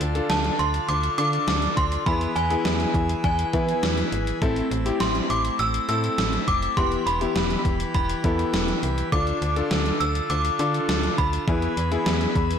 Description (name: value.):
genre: synth-pop.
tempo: 102 BPM.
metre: 4/4.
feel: straight.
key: unclear.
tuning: A4 = 440 Hz.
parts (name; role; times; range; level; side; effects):
pipe organ, full organ; sustained chords; 0.0-12.6 s; D3 to B4; -30 LUFS; equal; none.
slap-like FM bass; bass; 0.0-12.6 s; E1 to E3; -26 LUFS; equal; none.
gated 80s digital drum machine; drums; 0.0-12.6 s; hi-hat, kick drum, snare drum; -27 LUFS; equal; gated reverb, gated reverb snare, overdrive.
clear concert grand piano; accompaniment; 0.2-12.6 s; B3 to B5; -28 LUFS; left 3 dB; none.
synth chime; melody; 0.3-12.3 s; G#5 to E6; -26 LUFS; equal; ensemble chorus, ping-pong delay.
room: moderate concert hall reverb, RT60 1.9 s, digital ambience.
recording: blown-out, overdriven recording, overdrive.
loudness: -21 LUFS.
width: side -8 dB against mid.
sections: 0.0-12.6 A section.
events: grand piano fill 12.1-12.6.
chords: 0.0 Dm; 2.1 E; 4.4 Am; 6.8 Em; 9.1 Dm; 11.5 E.